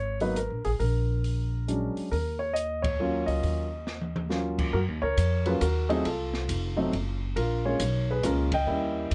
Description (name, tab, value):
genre	jazz piano trio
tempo	137 BPM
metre	3/4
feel	swing 65% on 8ths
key	Eb minor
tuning	A4 = 440 Hz
part	warm grand piano	melody	0.0-9.1 s	Gb3 to G5	-31 LUFS	equal	none
part	upright bass	bass	0.0-9.1 s	F1 to Gb2	-31 LUFS	equal	none
part	open jazz drum kit	drums	0.2-9.1 s	crash cymbal, hi-hat, kick drum, ride cymbal, snare drum, toms	-38 LUFS	equal	none
room	little or no reverb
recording	nothing above 10.9 kHz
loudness	-28 LUFS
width	mono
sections	0.0-4.7 A section; 4.7-9.1 A section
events	band accent 2.8, 8.5; drum fill 3.9-4.3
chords	0.0 Abmadd9; 0.8 Bb7alt; 2.1 Ebm9; 6.1 F(b9); 7.4 Bbm7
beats	0.36 | 0.80 1.24 1.68 | 2.11 2.55 2.99 | 3.43 3.87 4.30 | 4.74 5.18 5.62 | 6.05 6.49 6.93 | 7.37 7.80 8.24 | 8.68 9.12